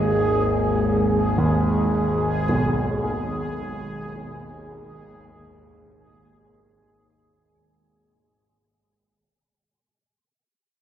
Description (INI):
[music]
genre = dark ambient drone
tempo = free time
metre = none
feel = none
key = unclear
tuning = A4 = 440 Hz
[part]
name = dark grand piano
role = arpeggios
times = 0.0-9.2 s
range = Cb2 to Eb2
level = -25 LUFS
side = equal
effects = analog delay
[part]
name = bowed-like drone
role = drone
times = 0.0-7.6 s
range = Ab1 to Eb2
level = -24 LUFS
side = equal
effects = built-in reverb
[part]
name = bubbling stepped-filter texture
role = texture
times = 0.0-7.5 s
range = Ab4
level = -26 LUFS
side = right 2 dB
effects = chorus, built-in reverb
[sound]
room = moderate plate reverb, RT60 2.6 s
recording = echo-heavy mix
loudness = -20 LUFS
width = side -10 dB against mid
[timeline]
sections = 0.0-7.5 A section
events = fade-out 0.0-7.5; filter sweep on synth drone 0.0-7.5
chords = 0.0 Abm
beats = free time